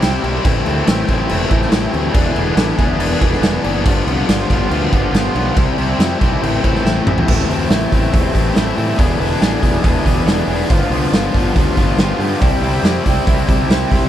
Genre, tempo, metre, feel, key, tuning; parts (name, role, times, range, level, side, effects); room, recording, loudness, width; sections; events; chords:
indie rock; 140 BPM; 4/4; straight; A minor; A4 = 440 Hz
phased analog pad; sustained chords; 0.0-14.1 s; G4 to C6; -28 LUFS; left 1 dB; phaser, chorus
cranked stack guitar; riff; 0.0-14.1 s; G2 to G#4; -20 LUFS; left 7 dB; overdrive
raw garage guitar; riff; 0.0-14.1 s; G2 to A4; -22 LUFS; right 7 dB; overdrive, lush chorus, tape echo
fuzz fingered electric bass; bass; 0.0-14.1 s; E1 to A2; -20 LUFS; right 1 dB; overdrive
raw garage drum kit; drums; 0.0-14.0 s; crash cymbal, hi-hat, kick drum, snare drum, toms; -16 LUFS; equal
little or no reverb; -13 LUFS; side -11 dB against mid
0.0-7.3 A section; 7.3-14.1 B section
drum fill 6.8-7.3
0.4 Am7; 2.1 E7sus4; 3.9 G7sus4; 5.6 Cmaj7; 6.4 Am7; 9.0 E7sus4; 10.7 G7sus4; 12.4 Cmaj7